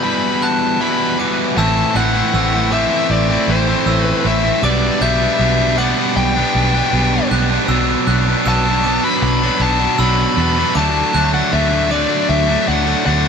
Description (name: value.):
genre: post-rock.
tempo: 78 BPM.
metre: 4/4.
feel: straight.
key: unclear.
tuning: A4 = 442 Hz.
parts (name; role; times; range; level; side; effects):
fuzz lead guitar; melody; 0.0-13.3 s; C5 to B5; -19 LUFS; left 3 dB; distortion, analog delay.
glockenspiel with brass mallets; arpeggios; 0.0-12.7 s; D6 to G6; -26 LUFS; right 4 dB; analog delay.
twangy electric guitar; arpeggios; 0.0-1.6 s; G3 to F#4; -27 LUFS; left 3 dB; warbly pitch drift, analog delay.
distorted electric guitar; riff; 0.0-13.3 s; E2 to E4; -19 LUFS; left 13 dB; overdrive.
thick fuzz guitar; riff; 0.0-13.3 s; A2 to B4; -19 LUFS; right 14 dB; distortion.
fingered electric bass; bass; 1.6-13.3 s; A1 to E2; -19 LUFS; equal; none.
room: light reverb.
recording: none.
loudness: -13 LUFS.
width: side -6 dB against mid.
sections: 0.0-1.6 A section; 1.6-13.3 B section.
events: break 0.0-1.6; build-up 0.0-1.6.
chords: 0.0 Emadd9; 1.6 Am; 4.6 G/B; 7.7 Bm; 10.8 D.